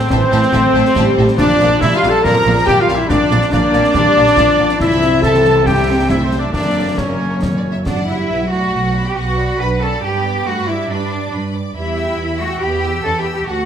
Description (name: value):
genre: cinematic, heroic adventure film score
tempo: 140 BPM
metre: 4/4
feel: straight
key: B minor from 8.3 s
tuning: A4 = 440 Hz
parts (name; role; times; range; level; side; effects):
- rich chamber violin section; melody; 0.0-13.7 s; C5 to B5; -25 LUFS; left 2 dB; none
- dark clarinet; second line; 0.0-7.8 s; C4 to Bb4; -24 LUFS; left 2 dB; none
- mellow oboe; second line; 0.0-7.9 s; C5 to Bb5; -24 LUFS; right 2 dB; none
- silver concert flute; second line; 0.0-7.9 s; C5 to Bb5; -23 LUFS; left 1 dB; none
- rich symphonic viola section; accompaniment; 0.0-13.7 s; E3 to D4; -24 LUFS; left 1 dB; none
- warm French horn section; sustained chords; 0.0-7.9 s; C4 to Bb4; -17 LUFS; left 3 dB; none
- clear trumpet; stabs; 0.0-7.8 s; C4 to Bb4; -20 LUFS; right 2 dB; none
- warm symphonic violin section; second line; 0.1-13.7 s; A4 to E6; -27 LUFS; left 2 dB; none
- rich symphonic cello section; bass; 0.1-13.7 s; F#2 to B4; -21 LUFS; right 2 dB; none
- rich symphonic double bass section; bass; 0.1-13.7 s; F#1 to G2; -20 LUFS; right 2 dB; none
- concert snare drum, concert bass drum and clash cymbals; drums; 0.1-8.0 s; none; -22 LUFS; equal; none
room: wet recital hall reverb, RT60 1.4 s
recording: none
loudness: -12 LUFS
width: side -8 dB against mid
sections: 0.0-8.3 A section; 8.3-13.7 B section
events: none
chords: 0.0 Am; 1.4 Bb; 4.8 C; 6.5 F#7; 8.3 Bm; 10.0 G; 11.8 Em